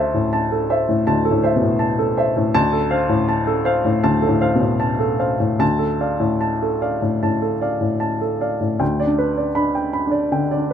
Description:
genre	neoclassical minimalist piano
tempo	74-82 BPM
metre	4/4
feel	rubato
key	unclear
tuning	A4 = 440 Hz
part	warm upright piano	solo	0.0-10.7 s	D2 to B5	-17 LUFS	equal	none
room	light reverb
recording	close, detailed microphones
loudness	-17 LUFS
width	side -8 dB against mid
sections	0.0-8.8 A section; 8.8-10.7 A section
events	none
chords	0.0 C6/D; 2.6 F/D; 5.6 Dm; 8.8 G/D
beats	0.34 1.08 1.83 | 2.56 3.30 4.05 4.82 | 5.61 6.42 7.23 8.02 | 8.81 9.58 10.33

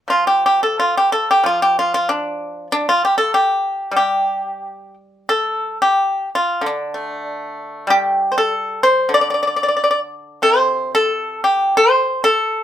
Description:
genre	chinese traditional, Chinese solo plucked strings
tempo	86-98 BPM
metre	2/4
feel	rubato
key	G shang mode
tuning	A4 = 440 Hz
part	pipa	solo	0.1-12.6 s	C3 to D5	-15 LUFS	equal	none
room	light reverb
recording	band playing live in one room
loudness	-15 LUFS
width	side -10 dB against mid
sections	0.0-5.3 A section; 5.3-12.6 B section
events	none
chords	none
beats	| 0.10 0.79 | 1.45 2.09 | 2.71 3.32 | 3.94 4.62 | 5.31 5.99 | 6.64 7.28 | 7.91 8.52 | 9.13 9.77 | 10.44 11.11 | 11.76 12.39

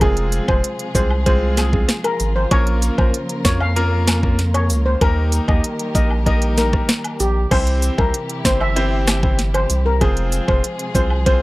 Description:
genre	dancehall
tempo	96 BPM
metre	4/4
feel	straight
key	F minor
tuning	A4 = 440 Hz
part	steel pan	melody	0.0-11.4 s	G4 to F5	-23 LUFS	left 1 dB	analog delay
part	clear concert grand piano	accompaniment	0.0-11.4 s	Ab3 to C5	-24 LUFS	equal	sidechain pumping
part	dark studio string section	sustained chords	0.0-11.4 s	C3 to Bb4	-28 LUFS	equal	sidechain pumping
part	saturated sub bass	bass	0.0-11.4 s	F1 to F2	-19 LUFS	equal	none
part	island pop drum kit	drums	0.0-11.4 s	crash cymbal, hi-hat, kick drum, rim click, snare drum	-18 LUFS	equal	overdrive
part	woodblock and cabasa	percussion	0.0-11.2 s	none	-29 LUFS	left 1 dB	none
room	light reverb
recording	none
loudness	-15 LUFS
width	side -20 dB against mid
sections	0.0-7.5 A section; 7.5-11.4 A section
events	none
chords	0.0 Fm; 2.5 Bbm; 5.0 Eb; 7.5 C; 10.0 Fm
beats	| 0.01 0.64 1.26 1.89 | 2.51 3.14 3.76 4.39 | 5.01 5.64 6.26 6.89 | 7.51 8.14 8.76 9.39 | 10.01 10.64 11.26

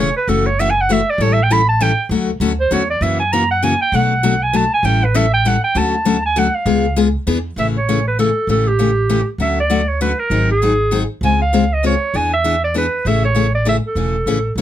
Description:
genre	acoustic string swing (jazz manouche)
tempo	197 BPM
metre	3/4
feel	swing 58% on 8ths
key	F# minor, A major from 7.6 s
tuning	A4 = 444 Hz
part	clear clarinet	melody	0.0-14.5 s	G4 to B5	-17 LUFS	right 2 dB	none
part	picked steel-string acoustic guitar	accompaniment	0.0-14.6 s	B2 to A4	-18 LUFS	left 6 dB	none
part	upright bass	bass	0.0-14.6 s	E1 to F#2	-19 LUFS	right 1 dB	none
room	light reverb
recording	close, detailed microphones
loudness	-14 LUFS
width	side -11 dB against mid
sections	0.3-7.6 A section; 7.6-14.6 B section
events	clarinet solo 0.0-7.6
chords	0.3 F#m7; 1.2 A7; 2.1 Dmaj7; 3.0 F#7; 3.9 Bm7; 4.8 A7; 5.7 Dmaj7; 6.7 C#7; 7.3 E7; 7.6 Amaj7; 8.5 A7; 9.4 Dmaj7; 10.3 G#7; 11.2 C#maj7; 12.1 E7; 13.0 Amaj7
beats	| 0.28 0.58 0.89 | 1.19 1.50 1.80 | 2.10 2.41 2.71 | 3.01 3.32 3.62 | 3.93 4.23 4.53 | 4.84 5.14 5.44 | 5.75 6.05 6.36 | 6.66 6.96 7.27 | 7.57 7.88 8.18 | 8.48 8.79 9.09 | 9.40 9.70 10.00 | 10.31 10.61 10.92 | 11.22 11.53 11.83 | 12.13 12.44 12.74 | 13.05 13.35 13.65 | 13.96 14.26 14.57

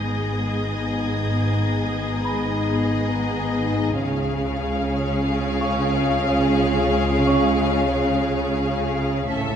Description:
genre	cinematic, suspense film score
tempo	90 BPM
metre	4/4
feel	straight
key	unclear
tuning	A4 = 439 Hz
part	rich studio violin section	melody	0.0-9.6 s	D#5 to E#5	-29 LUFS	left 4 dB	none
part	warm symphonic violin section	second line	0.0-9.6 s	G#4 to A4	-30 LUFS	left 2 dB	none
part	warm symphonic viola section	accompaniment	0.0-9.6 s	B3 to C#4	-28 LUFS	equal	none
part	mellow French horn section	sustained chords	0.0-9.6 s	G#3 to E#4	-28 LUFS	left 4 dB	none
part	rich symphonic cello section	bass	0.0-9.6 s	G#2 to C#3	-25 LUFS	right 2 dB	none
part	warm symphonic double bass section	bass	0.0-9.6 s	G#1 to C#2	-27 LUFS	right 2 dB	none
part	deep rumbling drone	drone	0.0-9.6 s	G#1 to C#2	-35 LUFS	equal	none
part	dark symphonic violin section	texture	0.0-3.6, 9.3-9.6 s	D#6 to G#6	-36 LUFS	equal	none
part	music box	texture	0.0-9.2 s	C#5 to G6	-32 LUFS	right 3 dB	none
room	wet recital hall reverb, RT60 1.6 s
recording	heard from further back in the room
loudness	-19 LUFS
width	side -8 dB against mid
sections	0.0-9.6 A section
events	none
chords	0.0 G#m; 3.9 C#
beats	0.61 | 1.28 1.94 2.61 3.28 | 3.94 4.61 5.28 5.94 | 6.61 7.28 7.94 8.61 | 9.28

